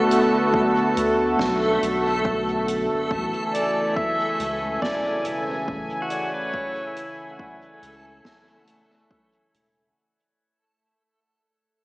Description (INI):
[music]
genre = ambient dub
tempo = 70 BPM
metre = 4/4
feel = swing 60% on 16ths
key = unclear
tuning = A4 = 440 Hz
[part]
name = warm analog pad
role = sustained chords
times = 0.0-10.0 s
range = C#3 to G#5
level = -22 LUFS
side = equal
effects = chorus
[part]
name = backwards swelling texture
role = texture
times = 0.0-10.0 s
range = A3 to A4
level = -29 LUFS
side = equal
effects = built-in reverb
[part]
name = soft-mallet drum kit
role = drums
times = 0.1-9.7 s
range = hi-hat, snare drum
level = -36 LUFS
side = right 2 dB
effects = dub echo
[part]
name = electronic kick drum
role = drums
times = 0.5-9.3 s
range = none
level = -33 LUFS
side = equal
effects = overdrive
[part]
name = soft dub sub bass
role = bass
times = 1.0-9.9 s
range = E1 to D2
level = -34 LUFS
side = equal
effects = tube saturation
[part]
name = warm clarinet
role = melody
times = 3.5-7.8 s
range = C#5 to E5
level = -27 LUFS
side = equal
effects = diffuse ambient delay
[part]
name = pedal steel guitar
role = arpeggios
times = 6.0-8.8 s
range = E4 to B4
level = -36 LUFS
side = equal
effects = diffuse ambient delay
[sound]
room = wet plate reverb, RT60 3.0 s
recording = dreamy mix soaked in reverb, small speaker sound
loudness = -20 LUFS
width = side -22 dB against mid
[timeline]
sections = 0.0-10.0 A section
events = fade-out 0.8-10.0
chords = 0.0 Bm7; 3.1 Amaj7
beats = 0.54 1.39 2.25 | 3.11 3.96 4.82 5.68 | 6.54 7.39 8.25 9.11